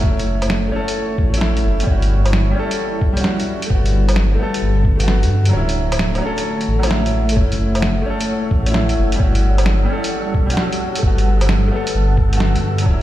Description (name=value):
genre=future garage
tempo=131 BPM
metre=4/4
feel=swing 67% on 16ths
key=unclear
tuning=A4 = 442 Hz
part: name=bright upright piano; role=accompaniment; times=0.0-13.0 s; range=F#3 to A4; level=-23 LUFS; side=left 1 dB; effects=sidechain pumping, tape echo
part: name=dark analog pad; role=sustained chords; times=0.0-13.0 s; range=D3 to F#5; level=-24 LUFS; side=equal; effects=chorus, sidechain pumping
part: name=dark detuned saw bass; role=bass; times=0.0-13.0 s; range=D1 to G2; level=-17 LUFS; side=equal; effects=sidechain pumping
part: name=electronic kick drum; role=drums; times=0.0-13.0 s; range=none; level=-17 LUFS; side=equal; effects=overdrive
part: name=lo-fi sampler-style drum kit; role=drums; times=0.2-12.8 s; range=hi-hat, snare drum, woodblock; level=-23 LUFS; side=right 1 dB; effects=overdrive
part: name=wind-like tuned noise texture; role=texture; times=8.0-13.0 s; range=A4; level=-32 LUFS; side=right 2 dB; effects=built-in reverb
room=light reverb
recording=played on a big sound system in a bare room, large studio reverb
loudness=-14 LUFS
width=side -14 dB against mid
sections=0.0-13.0 A section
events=break 5.5-7.4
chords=0.0 F#m7; 1.9 Em69/G; 3.7 Gmaj7; 5.5 Dmaj7; 7.4 F#m7; 9.2 Em69/G; 11.0 Gmaj7